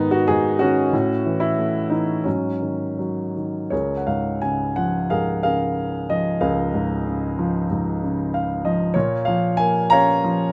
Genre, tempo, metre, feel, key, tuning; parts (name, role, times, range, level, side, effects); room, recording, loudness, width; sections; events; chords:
classical, lyrical solo piano; 79-98 BPM; 4/4; rubato; Db major from 3.7 s; A4 = 440 Hz
warm grand piano; solo; 0.0-10.5 s; Db2 to Bb5; -21 LUFS; equal
little or no reverb; close, detailed microphones; -21 LUFS; mono
0.0-3.7 A section; 3.7-10.5 B section
grand piano fill 8.0-9.0
0.0 G#m; 0.9 A6; 2.3 G#5; 3.7 Db6; 9.0 Bbm